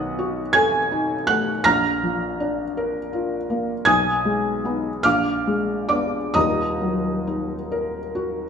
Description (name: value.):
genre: classical, romantic nocturne for solo piano.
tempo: 42-55 BPM (dotted quarters).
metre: 6/8.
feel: rubato.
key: Eb minor.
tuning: A4 = 440 Hz.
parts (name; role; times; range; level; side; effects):
felt-muted upright piano; solo; 0.0-8.5 s; Eb1 to Bb6; -20 LUFS; equal; none.
room: wet recital hall reverb, RT60 1.6 s.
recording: recorded in a church or concert hall.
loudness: -19 LUFS.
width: side -7 dB against mid.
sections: 0.0-8.5 A section.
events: none.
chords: 0.0 B7; 1.7 Bb; 3.9 Abm/Cb; 5.1 Bb7b9; 6.3 Ebm.